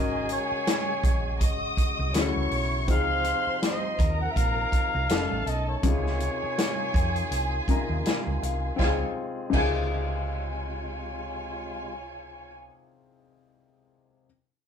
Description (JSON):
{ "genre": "lush 1970s-style soul", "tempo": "81 BPM", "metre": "4/4", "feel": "swing 58% on 16ths", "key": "Db major", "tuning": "A4 = 440 Hz", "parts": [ { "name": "warm flugelhorn", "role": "melody", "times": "0.0-8.0 s", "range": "C#5 to Gb5", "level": "-31 LUFS", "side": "left 1 dB", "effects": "none" }, { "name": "warm studio violin section", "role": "second line", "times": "0.0-12.5 s", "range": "F4 to Eb6", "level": "-32 LUFS", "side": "equal", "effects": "slapback echo" }, { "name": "warm grand piano", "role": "accompaniment", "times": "0.0-14.3 s", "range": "C3 to Bb5", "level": "-32 LUFS", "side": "left 6 dB", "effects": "none" }, { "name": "tonewheel organ", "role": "sustained chords", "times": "0.0-12.0 s", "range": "C3 to Gb4", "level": "-38 LUFS", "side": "right 1 dB", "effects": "fast rotary speaker, overdrive" }, { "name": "hollow-body short-scale fingered electric bass", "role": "bass", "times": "0.0-12.7 s", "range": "F1 to F2", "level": "-30 LUFS", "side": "equal", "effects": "none" }, { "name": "vintage drum kit", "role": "drums", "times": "0.3-9.8 s", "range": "crash cymbal, hi-hat, kick drum, snare drum", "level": "-27 LUFS", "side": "equal", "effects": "none" } ], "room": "moderate studio reverb, RT60 0.6 s", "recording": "band playing live in one room", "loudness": "-24 LUFS", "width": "side -8 dB against mid", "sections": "0.0-8.8 A section; 8.8-11.7 B section", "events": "grand piano fill 7.3-8.8", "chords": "0.0 Ab7sus4; 2.1 Dmaj9; 2.9 Dbmaj9; 5.1 Faug7; 5.8 Dbmaj7" }